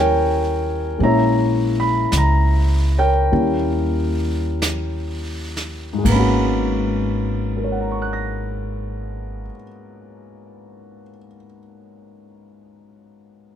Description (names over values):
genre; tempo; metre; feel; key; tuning
jazz ballad; 40-57 BPM; 4/4; swing 68% on 8ths; G# minor; A4 = 440 Hz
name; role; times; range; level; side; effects
dark concert grand piano; accompaniment; 0.0-13.6 s; G#2 to A#6; -20 LUFS; left 1 dB; none
upright bass; bass; 0.0-9.5 s; G#1 to D#2; -21 LUFS; right 1 dB; none
jazz brush drum kit; drums; 1.0-6.8 s; brushed snare drum, hi-hat, kick drum, ride cymbal, snare drum; -29 LUFS; right 3 dB; none
room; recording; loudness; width
light reverb; close, detailed microphones; -17 LUFS; side -9 dB against mid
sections
0.0-6.0 A section; 6.0-12.1 B section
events
slowing down 0.0-6.0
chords
0.0 D#7b9; 1.0 A#m7b5; 3.3 D#7b9; 6.0 G#m11